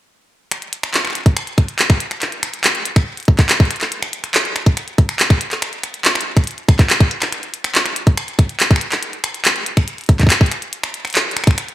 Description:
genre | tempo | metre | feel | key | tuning
IDM | 141 BPM | 4/4 | straight | none | none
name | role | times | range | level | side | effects
glitchy drum kit | drums | 0.5-11.7 s | finger snaps, handclaps, hi-hat | -17 LUFS | equal | gated reverb, digital delay
electronic kick drum | drums | 1.3-11.6 s | none | -11 LUFS | equal | none
room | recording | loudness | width
light reverb | bright 1980s-style digital production | -14 LUFS | side -14 dB against mid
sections
0.5-11.7 A section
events
none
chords
none

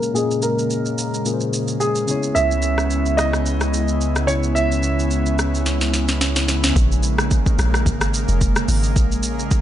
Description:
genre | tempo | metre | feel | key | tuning
amapiano | 109 BPM | 4/4 | swing 55% on 16ths | Bb minor | A4 = 440 Hz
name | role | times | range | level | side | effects
warm concert grand piano | melody | 0.0-5.3 s | Ab4 to Fb5 | -23 LUFS | right 1 dB | low-pass filter, ping-pong delay
tine electric piano | accompaniment | 0.0-6.8 s | Bb2 to Eb5 | -25 LUFS | left 3 dB | overdrive, low-pass filter
airy breathy pad | sustained chords | 0.0-9.6 s | Db3 to Fb4 | -24 LUFS | equal | chorus, sidechain pumping, low-pass filter
afro-pop drum kit | drums | 0.0-9.6 s | hi-hat, kick drum, rim click, shaker, snare drum | -22 LUFS | equal | none
punchy sub bass | bass | 2.4-6.7 s | Db2 | -21 LUFS | equal | none
deep log drum bass | bass | 6.8-9.6 s | F1 to Bb1 | -20 LUFS | equal | none
room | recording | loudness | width
digital ambience | nothing above 10.7 kHz | -17 LUFS | side -11 dB against mid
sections
0.0-6.8 A section; 6.8-9.6 B section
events
filter sweep 0.0-6.8; drum fill 5.7-6.8; drop 6.8-9.6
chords
0.0 Bbm9; 2.1 Dbm9; 6.8 Bbm7

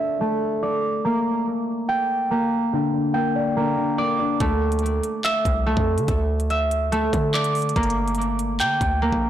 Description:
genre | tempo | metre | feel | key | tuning
hip hop, drill | 143 BPM | 4/4 | half-time | unclear | A4 = 439 Hz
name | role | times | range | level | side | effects
dark concert grand piano | accompaniment | 0.0-4.4 s | D3 to D5 | -26 LUFS | left 4 dB | low-pass filter
concert harp | arpeggios | 0.0-9.3 s | A3 to G5 | -22 LUFS | right 1 dB | low-pass filter, tape echo
downlifter | sound effects | 0.0-1.0 s | none | -53 LUFS | equal | none
hard-hitting 808-style bass | bass | 4.4-9.3 s | G1 to D3 | -24 LUFS | equal | none
drill drum kit | drums | 4.4-9.2 s | handclaps, hi-hat, kick drum | -27 LUFS | equal | none
room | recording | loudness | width
light reverb, studio reverb | blown-out, overdriven recording, overdrive | -20 LUFS | side -11 dB against mid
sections
0.0-9.3 A section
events
break 0.0-2.7; filter sweep 0.0-4.4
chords
0.0 Dsus2; 1.0 Gm; 4.4 Dsus2; 7.8 Gm

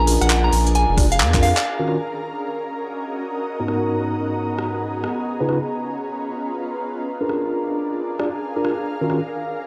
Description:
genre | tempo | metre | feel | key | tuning
UK garage, two-step garage | 133 BPM | 4/4 | swing 62% on 16ths | Eb minor | A4 = 440 Hz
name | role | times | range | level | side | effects
soft synth bell | melody | 0.0-1.6 s | F5 to Bb5 | -25 LUFS | equal | chorus, analog delay
airy breathy pad | sustained chords | 0.0-9.7 s | F5 to Bb5 | -35 LUFS | equal | chorus, sidechain pumping
mellow tine electric piano | stabs | 0.0-9.2 s | Ab2 to D5 | -26 LUFS | equal | low-pass filter, analog delay
saturated sub bass | bass | 0.0-1.5 s | F1 to F2 | -21 LUFS | equal | none
ethereal airy pad | texture | 0.0-9.7 s | Cb4 to F5 | -30 LUFS | equal | ensemble chorus, built-in reverb, sidechain pumping
garage drum kit | drums | 0.1-9.2 s | handclaps, hi-hat, rim click | -27 LUFS | equal | none
electronic kick drum | drums | 1.0-1.4 s | none | -21 LUFS | equal | none
room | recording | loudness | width
light reverb | dry, gritty hardware recording, lossy compression artefacts | -22 LUFS | mono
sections
0.0-1.7 A section; 1.7-9.7 B section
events
drum fill 1.3-1.7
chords
0.0 Bb7; 1.7 Ebm7; 3.5 Abm7; 5.0 Db9; 6.8 Bb7; 8.9 Ebm7

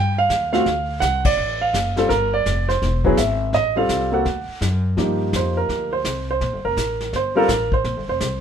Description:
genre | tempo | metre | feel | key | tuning
jazz piano trio | 167 BPM | 4/4 | swing 64% on 8ths | G minor | A4 = 442 Hz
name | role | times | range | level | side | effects
warm grand piano | melody | 0.0-8.4 s | F3 to G5 | -20 LUFS | right 2 dB | none
upright bass | bass | 0.0-8.4 s | E1 to G2 | -24 LUFS | left 1 dB | none
vintage brush drum kit | drums | 0.3-8.4 s | brushed snare drum, hi-hat, kick drum, ride cymbal, snare drum | -26 LUFS | left 2 dB | none
room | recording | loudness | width
light reverb | minimal, uncompressed stereo recording | -18 LUFS | side -8 dB against mid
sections
0.0-5.0 A section; 5.0-8.4 B section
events
band accent 1.2; grand piano solo 5.0-8.4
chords
0.0 Eb; 0.7 D7#9; 2.1 G5; 2.8 E; 3.5 F9/A; 4.3 D; 5.0 Gm7

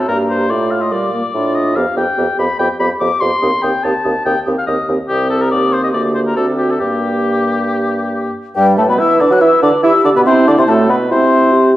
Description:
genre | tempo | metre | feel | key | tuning
quick classical-period movement for wind quintet | 143 BPM | 4/4 | rubato | G minor, G major from 8.6 s | A4 = 440 Hz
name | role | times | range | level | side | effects
mellow hollow concert flute | melody | 0.0-11.7 s | G5 to F#6 | -20 LUFS | left 4 dB | none
warm oboe | second line | 0.0-11.7 s | G4 to D6 | -18 LUFS | left 2 dB | none
mellow French horn | accompaniment | 0.0-11.8 s | G3 to B4 | -18 LUFS | equal | none
warm clarinet | accompaniment | 0.0-11.7 s | G3 to G4 | -19 LUFS | right 3 dB | none
mellow bassoon | bass | 0.0-11.7 s | C2 to F#3 | -17 LUFS | right 1 dB | none
room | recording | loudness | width
wet recital hall reverb, RT60 1.4 s | worn, warbling old tape, cassette tape, warbly pitch drift | -12 LUFS | side -15 dB against mid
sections
0.0-8.6 A section; 8.6-11.8 A section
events
none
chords
0.1 Gm; 1.8 G7/F; 3.4 Cm/Eb; 5.1 Cm; 5.9 Gm/D; 6.4 D7; 6.8 Gm; 8.6 G; 10.3 C

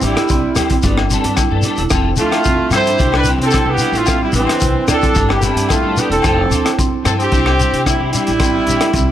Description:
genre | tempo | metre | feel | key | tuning
highlife guitar band | 111 BPM | 4/4 | straight | C major | A4 = 440 Hz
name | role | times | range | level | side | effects
warm horn section | melody | 0.0-9.1 s | E3 to C5 | -17 LUFS | right 1 dB | analog delay
clean electric guitar | accompaniment | 0.0-8.8 s | F3 to A4 | -24 LUFS | left 4 dB | ensemble chorus
marimba with medium mallets | arpeggios | 0.0-9.1 s | C4 to E4 | -21 LUFS | right 8 dB | none
upright bass | bass | 0.0-9.0 s | E1 to C3 | -20 LUFS | equal | none
crunchy breakbeat drum kit | drums | 0.0-9.1 s | hi-hat, kick drum, rim click | -19 LUFS | equal | none
shekere | percussion | 0.0-9.1 s | none | -22 LUFS | left 3 dB | none
agogo bells | percussion | 0.2-8.9 s | none | -24 LUFS | left 16 dB | none
room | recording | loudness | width
light reverb, studio ambience | none | -12 LUFS | side -11 dB against mid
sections
0.0-9.1 A section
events
none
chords
0.0 C; 0.8 Gadd9; 1.9 F; 3.0 C; 5.2 Gadd9; 6.2 F; 7.3 C

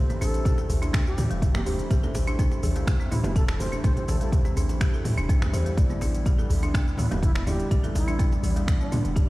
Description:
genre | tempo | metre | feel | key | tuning
afro house | 124 BPM | 4/4 | straight | A minor | A4 = 440 Hz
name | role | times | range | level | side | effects
warm analog pad | sustained chords | 0.0-9.3 s | C3 to E4 | -38 LUFS | right 1 dB | chorus, sidechain pumping
mellow tine electric piano | stabs | 0.0-9.3 s | G3 to D5 | -34 LUFS | left 1 dB | lush chorus, sidechain pumping, tape echo
warm 808-style bass | bass | 0.0-9.3 s | E1 to A2 | -28 LUFS | equal | sidechain pumping
folk marimba with hard mallets | arpeggios | 0.1-9.3 s | E3 to A4 | -34 LUFS | equal | sidechain pumping, tape echo
afro-pop drum kit | drums | 0.1-9.3 s | cabasa, finger snaps, hi-hat | -37 LUFS | equal | small room ambience
congas | percussion | 0.1-9.0 s | none | -33 LUFS | right 2 dB | none
bright reedy bass bansuri | melody | 0.2-9.0 s | B3 to C5 | -37 LUFS | equal | tape echo
djembe | percussion | 0.2-9.3 s | none | -32 LUFS | equal | none
electronic kick drum | drums | 0.5-9.3 s | none | -23 LUFS | equal | small room ambience
room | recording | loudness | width
studio reverb | played on a big sound system in a bare room, stone room reverb | -22 LUFS | side -19 dB against mid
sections
0.0-9.3 A section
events
none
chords
0.0 Am7; 5.8 Em7

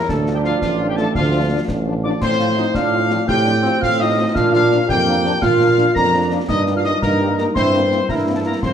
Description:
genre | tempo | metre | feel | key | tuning
military-style march for wind band | 112 BPM (dotted quarters) | 6/8 | straight | Bb major | A4 = 440 Hz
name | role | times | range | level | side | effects
dark trumpet section | melody | 0.0-8.7 s | F4 to Bb5 | -21 LUFS | left 2 dB | none
warm trombone section | sustained chords | 0.0-8.7 s | Bb3 to F4 | -24 LUFS | right 3 dB | none
bright piccolo | second line | 0.1-8.7 s | F5 to Bb6 | -25 LUFS | left 4 dB | none
warm euphonium | second line | 0.1-8.7 s | F3 to Bb4 | -22 LUFS | right 2 dB | none
warm tuba | bass | 0.1-8.7 s | A1 to Bb2 | -20 LUFS | right 2 dB | none
concert snare drum, concert bass drum and clash cymbals | drums | 0.1-8.7 s | none | -27 LUFS | left 1 dB | none
warm French horn section | accompaniment | 0.3-8.5 s | F3 to F4 | -27 LUFS | left 4 dB | none
room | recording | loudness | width
wet recital hall reverb, RT60 1.5 s | dark, warm production | -15 LUFS | side -8 dB against mid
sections
0.0-8.7 A section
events
none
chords
0.1 Dm; 2.2 F/A; 4.4 Bb; 6.5 Eb/G; 7.6 C7/G

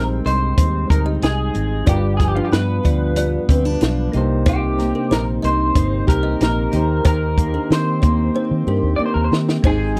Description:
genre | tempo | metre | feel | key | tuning
indie pop, bedroom pop | 93 BPM | 4/4 | straight | Eb major | A4 = 440 Hz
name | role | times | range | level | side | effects
electric guitar through a small old amp | melody | 0.0-10.0 s | F4 to D5 | -26 LUFS | equal | lush chorus, slapback echo
kalimba | second line | 0.0-9.8 s | D4 to Eb5 | -29 LUFS | equal | analog chorus, slapback echo
fingerpicked steel-string acoustic guitar | accompaniment | 0.0-10.0 s | G2 to G4 | -26 LUFS | equal | analog chorus, vibrato effect
soft electric-piano-like synth keys | accompaniment | 0.0-10.0 s | G3 to G5 | -30 LUFS | equal | chorus, tremolo, cassette tape
vintage muted fingered electric bass | bass | 0.0-10.0 s | G1 to Eb3 | -23 LUFS | equal | none
compact cocktail drum kit | drums | 0.3-10.0 s | hi-hat, kick drum, snare drum, splash cymbal | -20 LUFS | equal | none
room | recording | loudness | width
little or no reverb | dry, close 1970s-style studio recording | -18 LUFS | mono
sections
0.0-10.0 A section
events
drum fill 8.3-9.6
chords
0.0 Abmaj7; 1.9 G7; 4.1 Cm7; 6.7 Eb6

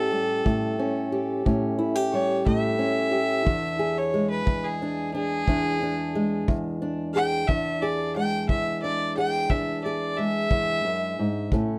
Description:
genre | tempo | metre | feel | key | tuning
acoustic country blues, solo or duo | 60 BPM (dotted quarters) | 12/8 | straight | E mixolydian | A4 = 439 Hz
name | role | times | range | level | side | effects
warm fiddle | melody | 0.0-11.5 s | G#4 to G5 | -30 LUFS | equal | none
fingerpicked old ladder-braced acoustic guitar | accompaniment | 0.0-11.8 s | E2 to G#4 | -28 LUFS | equal | none
kick drum | drums | 0.5-11.7 s | none | -27 LUFS | equal | none
room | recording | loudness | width
little or no reverb | close, detailed microphones | -25 LUFS | mono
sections
0.0-11.8 A section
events
none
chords
0.0 A7; 3.5 E7

